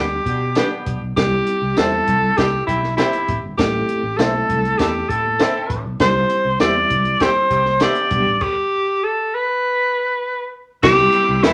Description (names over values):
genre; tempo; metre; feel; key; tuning
uptempo 1960s-style soul; 99 BPM; 4/4; straight; C major; A4 = 441 Hz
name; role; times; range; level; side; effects
breathy tenor saxophone; melody; 0.0-11.5 s; E4 to D5; -20 LUFS; equal; none
clear saxophone section; second line; 0.0-11.3 s; B3 to A4; -29 LUFS; equal; none
reed electric piano; accompaniment; 0.0-11.5 s; G3 to A4; -27 LUFS; equal; fast tremolo
fretless electric bass; bass; 0.0-11.5 s; G1 to B2; -28 LUFS; equal; none
compact cocktail drum kit; drums; 0.3-11.5 s; crash cymbal, hi-hat, kick drum, snare drum; -24 LUFS; equal; none
electric guitar through a small old amp; stabs; 0.6-11.5 s; D4 to E5; -28 LUFS; equal; none
tambourine; percussion; 0.6-11.5 s; none; -44 LUFS; equal; none
congas; percussion; 1.2-11.5 s; none; -36 LUFS; equal; none
tonewheel organ; sustained chords; 10.8-11.5 s; B5 to E6; -32 LUFS; equal; none
room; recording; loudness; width
wet club reverb, RT60 0.8 s; none; -18 LUFS; mono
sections
0.0-10.8 A section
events
stop 8.4-10.8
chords
0.0 G; 1.2 C; 3.6 Am; 6.0 C; 8.1 G; 10.8 Cmaj7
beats
0.56 | 1.17 1.77 2.37 2.98 | 3.58 4.19 4.79 5.40 | 6.00 6.61 7.21 7.81 | 8.42 9.02 9.62 10.23 | 10.83 11.43